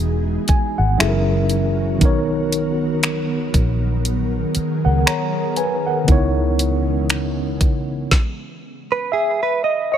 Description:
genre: contemporary R&B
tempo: 59 BPM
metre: 4/4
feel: swing 58% on 16ths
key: B major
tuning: A4 = 440 Hz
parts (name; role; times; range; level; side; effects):
- mellow tine electric piano; accompaniment; 0.0-10.0 s; C#3 to A#5; -21 LUFS; equal; medium stereo tremolo
- ethereal airy pad; sustained chords; 0.0-8.1 s; C#3 to A#4; -26 LUFS; equal; ensemble chorus, built-in reverb
- vintage muted fingered electric bass; bass; 0.0-8.1 s; E1 to C#2; -20 LUFS; equal; none
- smooth R&B drum kit; drums; 0.5-8.4 s; finger snaps, hi-hat, kick drum, snare drum; -18 LUFS; equal; none
- direct-recorded clean electric guitar; arpeggios; 8.9-10.0 s; G#4 to D#5; -19 LUFS; right 6 dB; analog chorus
room: little or no reverb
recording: none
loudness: -17 LUFS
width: side -9 dB against mid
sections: 0.0-10.0 A section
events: tine electric piano fill 0.0-2.0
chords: 0.0 Emaj7; 1.0 F#7; 2.0 Bmaj7; 6.1 C#m7

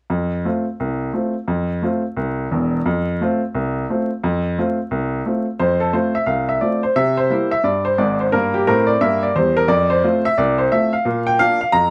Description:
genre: jazz, stride piano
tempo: 175 BPM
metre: 4/4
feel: swing 63% on 8ths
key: F major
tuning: A4 = 440 Hz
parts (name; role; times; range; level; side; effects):
- clear upright piano; solo; 0.1-11.9 s; E1 to Bb5; -19 LUFS; equal; none
room: light reverb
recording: close, detailed microphones, vinyl crackle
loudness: -19 LUFS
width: mono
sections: 0.1-5.6 A section; 5.6-11.9 B section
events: none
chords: 0.1 F; 7.0 C7; 8.3 C7/G; 9.7 F; 11.1 Bb

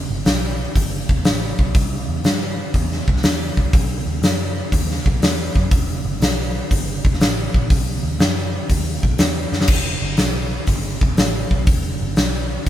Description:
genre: blues rock power trio and southern rock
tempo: 121 BPM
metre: 4/4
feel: swing 68% on 8ths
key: E minor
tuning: A4 = 440 Hz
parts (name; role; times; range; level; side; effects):
- vintage muted picked electric bass; bass; 0.0-12.7 s; E1 to G2; -23 LUFS; equal; none
- huge arena drum kit; drums; 0.3-12.7 s; crash cymbal, hi-hat, kick drum, snare drum; -18 LUFS; equal; none
room: light reverb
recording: band playing live in one room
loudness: -16 LUFS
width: side -12 dB against mid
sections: 0.0-9.7 A section; 9.7-12.7 B section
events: drum fill 9.4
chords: none

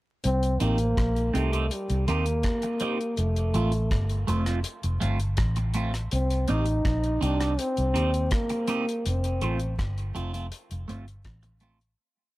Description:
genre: roots reggae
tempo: 82 BPM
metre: 4/4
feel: straight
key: C dorian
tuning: A4 = 438 Hz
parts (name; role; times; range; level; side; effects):
- dark trombone; melody; 0.2-9.8 s; G3 to Eb4; -28 LUFS; equal; dub echo
- deep reggae drum kit; drums; 0.2-12.0 s; hi-hat, kick drum, rim click; -31 LUFS; equal; none
- vintage muted fingered electric bass; bass; 0.3-11.9 s; F1 to Eb2; -26 LUFS; equal; none
- electric guitar at the edge of break-up; accompaniment; 0.6-11.8 s; A3 to G4; -32 LUFS; right 3 dB; phaser, dub echo
room: light reverb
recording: vinyl crackle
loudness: -24 LUFS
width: side -18 dB against mid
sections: 0.2-12.0 A section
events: fade-out 9.0-12.0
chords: 0.2 Cm; 3.2 F; 6.1 Cm; 9.0 F

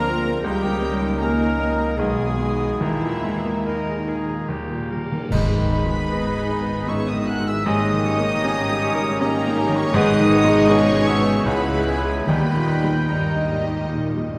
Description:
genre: classical, romantic movement for piano and orchestra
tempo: 70-81 BPM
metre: 3/4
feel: rubato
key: G# minor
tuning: A4 = 440 Hz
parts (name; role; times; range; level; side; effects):
- clear baby grand piano; melody; 0.0-14.4 s; B1 to A#5; -26 LUFS; equal; none
- warm studio violin section; melody; 0.0-13.9 s; D#5 to F#6; -35 LUFS; equal; none
- bright oboe; second line; 0.0-14.3 s; G4 to G#5; -34 LUFS; equal; none
- dark studio violin section; second line; 0.0-14.4 s; A#3 to D#5; -36 LUFS; equal; none
- silver concert flute; second line; 0.0-13.9 s; A#5 to F#6; -35 LUFS; equal; none
- warm clarinet; second line; 0.0-14.4 s; D#4 to A#4; -36 LUFS; equal; none
- mellow bassoon; accompaniment; 0.0-14.4 s; G3 to D#4; -35 LUFS; equal; none
- warm studio viola section; accompaniment; 0.0-14.4 s; D#3 to A#4; -31 LUFS; equal; none
- mellow French horn section; sustained chords; 0.0-13.9 s; A#3 to A#4; -31 LUFS; equal; none
- warm trombone section; sustained chords; 0.0-14.3 s; A#2 to A#3; -35 LUFS; equal; none
- warm studio cello section; bass; 0.0-14.4 s; C#2 to A#3; -31 LUFS; equal; none
- warm studio double bass section; bass; 0.0-14.4 s; G#1 to D#2; -32 LUFS; equal; none
- cymbal swell, clash cymbals and concert bass drum; percussion; 2.8-6.8 s; none; -31 LUFS; equal; none
- timpani; percussion; 2.8-6.5, 9.9-13.5 s; G#2 to D#3; -32 LUFS; equal; none
- mellow trumpet section; stabs; 5.3-13.9 s; A#4 to F#5; -32 LUFS; equal; none
room: wet scoring stage reverb, RT60 2.1 s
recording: heard from further back in the room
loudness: -21 LUFS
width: mono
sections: 0.0-5.3 A section; 5.3-14.4 B section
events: timpani fill 4.5-5.3; band accent 5.3-6.1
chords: 0.5 D#7/C#; 2.0 G#m/B; 2.8 D#sus4; 4.5 D#; 5.3 G#m; 7.7 D#7/G#; 10.0 G#m; 11.5 C#m7; 12.3 D#

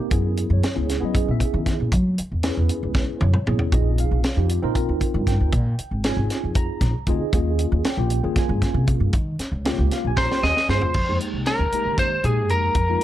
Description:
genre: electric jazz fusion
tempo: 233 BPM (eighths)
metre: 7/8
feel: straight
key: unclear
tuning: A4 = 440 Hz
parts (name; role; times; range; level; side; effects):
- bright tine electric piano; accompaniment; 0.0-13.0 s; Ab3 to Bb5; -26 LUFS; right 1 dB; medium stereo tremolo, wide subtle chorus
- upright bass; bass; 0.1-13.0 s; Ab1 to Gb3; -22 LUFS; equal; none
- tight funk drum kit; drums; 0.1-13.0 s; crash cymbal, hi-hat, kick drum, snare drum, toms; -24 LUFS; equal; none
- lightly driven lead guitar; melody; 10.2-13.0 s; Ab4 to Eb5; -22 LUFS; equal; slapback echo, plate reverb
room: little or no reverb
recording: lossy compression artefacts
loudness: -19 LUFS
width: side -13 dB against mid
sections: 0.0-10.9 A section; 10.9-13.0 B section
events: drum fill 3.0-3.7, 10.2-10.9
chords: 0.1 Gb9sus4; 3.7 Bb9sus4; 7.3 Eb9sus4; 10.9 Fm11

